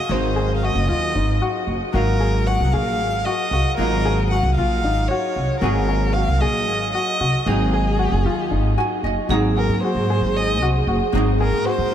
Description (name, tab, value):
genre	progressive instrumental, progressive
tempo	228 BPM (eighths)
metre	7/8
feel	straight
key	Ab mixolydian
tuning	A4 = 439 Hz
part	warm violin	melody	0.0-11.9 s	Ab4 to Gb5	-24 LUFS	equal	diffuse ambient delay
part	archtop guitar, miked and amplified	accompaniment	0.0-11.9 s	Gb3 to Ab5	-26 LUFS	equal	double-tracked left and right
part	warm baby grand piano	arpeggios	0.0-11.9 s	Eb4 to Ab4	-25 LUFS	left 4 dB	diffuse ambient delay
part	upright bass	bass	0.1-11.9 s	Gb1 to Ab2	-21 LUFS	equal	none
part	vibraphone with hard mallets	second line	9.3-11.9 s	Ab4	-26 LUFS	right 4 dB	diffuse ambient delay
room	moderate huge ambient reverb, RT60 8.8 s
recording	dreamy mix soaked in reverb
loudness	-17 LUFS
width	side -10 dB against mid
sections	0.0-9.3 A section; 9.3-11.9 B section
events	hollow-body jazz guitar fill 8.5-9.3; violin solo 9.3-11.9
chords	0.0 Ab7; 1.9 Ebmadd9/Ab; 7.5 Ab7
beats	| 0.10 0.36 0.62 0.89 1.15 1.41 1.67 | 1.94 2.20 2.46 2.73 2.99 3.25 3.51 | 3.78 4.04 4.30 4.57 4.83 5.09 5.36 | 5.62 5.88 6.14 6.41 6.67 6.93 7.20 | 7.46 7.72 7.98 8.25 8.51 8.77 9.03 | 9.30 9.56 9.82 10.08 10.35 10.61 10.87 | 11.13 11.39 11.66 11.92